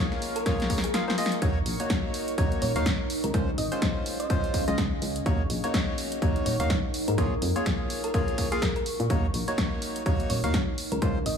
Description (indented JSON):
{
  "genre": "piano house",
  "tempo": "125 BPM",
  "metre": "4/4",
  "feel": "swing 58% on 16ths",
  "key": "Eb dorian",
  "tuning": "A4 = 440 Hz",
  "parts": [
    { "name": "percussive organ stab", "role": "riff", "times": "0.0-11.2 s", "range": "Ab3 to F5", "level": "-32 LUFS", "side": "left 1 dB", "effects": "chorus, sidechain pumping, tape echo" },
    { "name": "deep dark ambient pad", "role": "texture", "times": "0.0-11.4 s", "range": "Db4 to Db6", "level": "-35 LUFS", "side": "equal", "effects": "chorus, built-in reverb, sidechain pumping" },
    { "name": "punchy analog drum machine", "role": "drums", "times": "0.1-11.4 s", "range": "hi-hat, snare drum", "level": "-31 LUFS", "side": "left 1 dB", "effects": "overdrive, studio reverb" },
    { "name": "thumb-piano-like synth pluck", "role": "melody", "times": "0.4-11.4 s", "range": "Ab4 to Eb5", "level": "-34 LUFS", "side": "right 1 dB", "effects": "chorus, cassette tape, tape echo" },
    { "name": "electronic kick drum", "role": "drums", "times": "0.5-11.1 s", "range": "none", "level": "-28 LUFS", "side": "equal", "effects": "overdrive, studio reverb" },
    { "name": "solid FM bass", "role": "bass", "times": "1.4-11.4 s", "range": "Eb1 to Bb2", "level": "-29 LUFS", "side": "equal", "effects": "sidechain pumping" }
  ],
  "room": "light reverb, digital ambience",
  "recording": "small room ambience",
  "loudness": "-24 LUFS",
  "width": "side -7 dB against mid",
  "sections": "0.0-11.4 A section",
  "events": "drum fill 0.5-1.4; kick drops out 0.9-1.4",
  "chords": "0.0 Bbm7; 1.4 Ebm7; 3.1 Dbmaj7; 5.3 Ebm7; 7.2 Bbm7; 9.1 Ebm7; 10.8 Dbmaj7"
}